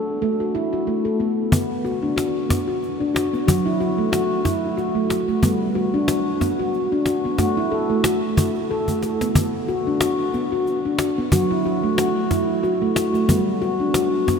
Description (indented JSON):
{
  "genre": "world meditative, meditative tuned percussion",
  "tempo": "92 BPM",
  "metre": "3/4",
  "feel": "swing 55% on 16ths",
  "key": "B minor",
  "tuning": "A4 = 438 Hz",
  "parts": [
    { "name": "handpan", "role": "arpeggios", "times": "0.0-14.4 s", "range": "F#3 to A4", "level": "-19 LUFS", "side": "equal", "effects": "none" },
    { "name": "cajon", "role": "percussion", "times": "1.5-14.4 s", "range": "none", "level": "-24 LUFS", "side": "equal", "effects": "none" }
  ],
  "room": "wet huge ambient reverb, RT60 7.3 s",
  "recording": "dreamy mix soaked in reverb",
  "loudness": "-18 LUFS",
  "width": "side -6 dB against mid",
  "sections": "0.0-1.5 A section; 1.5-14.4 B section",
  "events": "drum fill 8.9-9.4",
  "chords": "0.0 A5; 1.5 Bm; 3.5 F#m; 5.4 G; 7.4 A5; 9.4 Bm; 11.3 F#m; 13.3 G",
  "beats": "0.21 0.87 | 1.52 2.17 2.82 | 3.47 4.12 4.78 | 5.43 6.08 6.74 | 7.39 8.04 8.70 | 9.35 10.01 10.66 | 11.32 11.98 12.63 | 13.29 13.95"
}